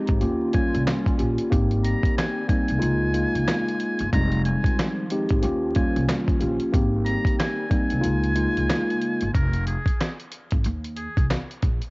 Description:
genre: hip hop, boom-bap hip-hop.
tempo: 92 BPM.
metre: 4/4.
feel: swing 60% on 16ths.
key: F minor.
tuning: A4 = 440 Hz.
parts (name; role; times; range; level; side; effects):
mellow tine electric piano; accompaniment; 0.0-9.3 s; G3 to G4; -24 LUFS; equal; slow stereo tremolo, cassette tape, high-pass filter, low-pass filter.
hollow soft pad; sustained chords; 0.0-9.3 s; Db3 to F4; -36 LUFS; equal; ensemble chorus, high-pass filter, low-pass filter, cassette tape.
upright bass; bass; 0.1-11.8 s; F1 to Eb2; -26 LUFS; equal; none.
dusty soul sampler-style drum kit; drums; 0.1-11.9 s; handclaps, hi-hat, kick drum, snare drum; -24 LUFS; equal; cassette tape.
trumpet with metal mute; melody; 0.5-11.3 s; Ab4 to Bb5; -31 LUFS; equal; high-pass filter, low-pass filter.
room: little or no reverb.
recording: home recording on cassette, vinyl crackle, nothing above 7.6 kHz.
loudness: -20 LUFS.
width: side -26 dB against mid.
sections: 0.0-9.3 A section; 9.3-11.9 B section.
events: kick muted 8.0-9.3.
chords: 0.2 Eb9; 1.5 Abmaj7; 2.8 Db6; 4.1 Fm9; 5.4 Eb9; 6.7 Abmaj7; 8.0 Db6; 9.3 Fm; 10.6 Eb5.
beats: 0.21 0.87 | 1.52 2.17 2.82 3.48 | 4.13 4.78 5.43 6.08 | 6.74 7.39 8.04 8.69 | 9.35 10.00 10.65 11.30.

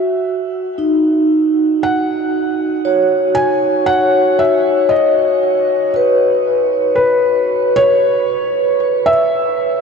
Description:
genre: ambient.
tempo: 58 BPM.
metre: 3/4.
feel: straight.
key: unclear.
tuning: A4 = 440 Hz.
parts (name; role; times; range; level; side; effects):
felt-muted upright piano; melody; 0.0-9.8 s; B4 to G#5; -17 LUFS; left 1 dB; shimmer reverb, ping-pong delay.
vibraphone with soft mallets; arpeggios; 0.0-9.8 s; D#4 to C#5; -14 LUFS; right 1 dB; shimmer reverb, ping-pong delay.
room: wet huge ambient reverb, RT60 7.7 s.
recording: dark, warm production.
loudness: -12 LUFS.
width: side -5 dB against mid.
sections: 0.0-9.8 A section.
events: fade-in on felt piano 0.0-9.8.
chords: 0.0 N.C.; 1.8 F#sus4; 8.0 Bsus24.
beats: 0.78 | 1.82 2.85 3.89 | 4.92 5.96 6.99 | 8.02 9.06.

